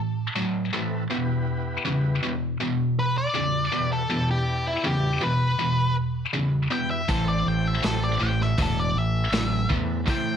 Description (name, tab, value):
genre	blues rock power trio and southern rock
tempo	80 BPM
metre	4/4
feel	straight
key	E minor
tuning	A4 = 441 Hz
part	tight distorted guitar	riff	0.0-10.4 s	E2 to F#3	-24 LUFS	equal	distortion
part	overdriven tonewheel organ	sustained chords	0.7-10.4 s	B3 to D5	-35 LUFS	right 2 dB	fast rotary speaker
part	octave-fuzz lead guitar	melody	3.0-10.4 s	E4 to G5	-27 LUFS	left 2 dB	distortion
part	growling fingered electric bass	bass	7.1-10.4 s	E1 to A2	-27 LUFS	right 1 dB	overdrive
part	vintage drum kit	drums	7.1-10.2 s	hi-hat, kick drum, snare drum	-28 LUFS	equal	none
room	moderate studio reverb, RT60 0.8 s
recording	none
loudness	-22 LUFS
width	side -8 dB against mid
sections	0.0-10.4 A section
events	none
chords	0.0 Am; 1.1 Em; 7.1 Am